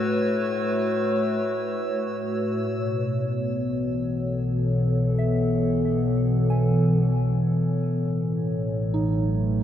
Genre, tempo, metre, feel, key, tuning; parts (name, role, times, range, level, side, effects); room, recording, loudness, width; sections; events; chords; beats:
ambient; free time; A4 = 440 Hz
warbly tape-like pad; sustained chords; 0.0-9.6 s; A2 to C#5; -22 LUFS; equal; chorus, built-in reverb
drifting glass-harmonics texture; texture; 0.0-2.7 s; E6; -40 LUFS; left 1 dB; chorus, built-in reverb
round analog bass; bass; 2.7-9.6 s; A1 to B1; -43 LUFS; equal
soft synth bell; arpeggios; 5.2-9.6 s; D#4 to G#5; -35 LUFS; right 3 dB; chorus, phaser, tape echo
wet lush hall reverb, RT60 2.7 s; dark, warm production; -22 LUFS; side -10 dB against mid
0.0-2.7 A section; 2.7-9.6 B section
fade-in on synth bell 2.7-9.6; fade-in on analog synth bass 2.7-9.6; filter sweep on ambient pad 2.7-9.6
0.0 A6; 2.7 B9sus4; 8.0 A6
free time